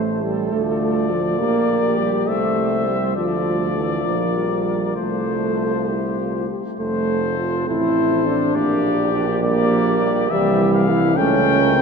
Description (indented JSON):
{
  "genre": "classical, brass quintet",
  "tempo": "68 BPM (dotted quarters)",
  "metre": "6/8",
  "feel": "straight",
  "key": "F major",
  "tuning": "A4 = 441 Hz",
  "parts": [
    { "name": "warm trumpet", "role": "melody", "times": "0.0-11.8 s", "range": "C5 to G5", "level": "-24 LUFS", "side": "left 7 dB", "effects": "none" },
    { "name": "mellow flugelhorn", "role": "second line", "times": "0.0-11.8 s", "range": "G4 to C5", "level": "-28 LUFS", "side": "right 2 dB", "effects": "none" },
    { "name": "mellow French horn", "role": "accompaniment", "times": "0.0-11.8 s", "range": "E3 to G4", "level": "-27 LUFS", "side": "left 5 dB", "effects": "none" },
    { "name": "mellow trombone", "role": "accompaniment", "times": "0.0-11.8 s", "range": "E3 to F4", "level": "-20 LUFS", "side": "right 2 dB", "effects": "none" },
    { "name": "warm tuba", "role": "bass", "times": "0.0-11.8 s", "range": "F1 to D2", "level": "-24 LUFS", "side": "right 3 dB", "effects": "none" }
  ],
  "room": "wet cathedral reverb, RT60 5.0 s",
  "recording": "minimal, uncompressed stereo recording",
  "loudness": "-17 LUFS",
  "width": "side -5 dB against mid",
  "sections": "0.0-6.8 A section; 6.8-11.8 B section",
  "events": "none",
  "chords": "0.0 Am; 0.5 Dm; 1.4 Gm/Bb; 2.3 C; 3.2 Dm; 4.1 Gm7/Bb; 5.0 F/C; 5.9 C; 6.8 F; 7.7 Amadd11; 8.6 Gm/Bb; 10.3 C; 11.2 A7/C#",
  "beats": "0.52 | 1.40 2.27 | 3.16 4.05 | 4.96 5.88 | 6.80 7.68 | 8.56 9.43 | 10.31 11.18"
}